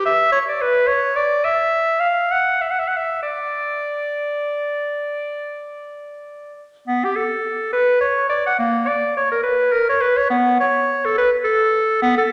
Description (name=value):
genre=classical, baroque-style fantasia for unaccompanied clarinet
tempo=62-72 BPM (dotted quarters)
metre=12/8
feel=rubato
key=D major, B minor from 6.9 s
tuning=A4 = 440 Hz
part: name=bright clarinet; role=solo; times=0.0-12.3 s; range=A#3 to F#5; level=-19 LUFS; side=equal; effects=none
room=wet scoring stage reverb, RT60 2.0 s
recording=none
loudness=-19 LUFS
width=mono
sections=0.0-6.9 A section; 6.9-12.3 A section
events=none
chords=none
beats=0.63 1.47 2.33 | 3.22 4.14 5.05 5.95 | 6.89 7.75 8.61 9.46 | 10.31 11.16 12.01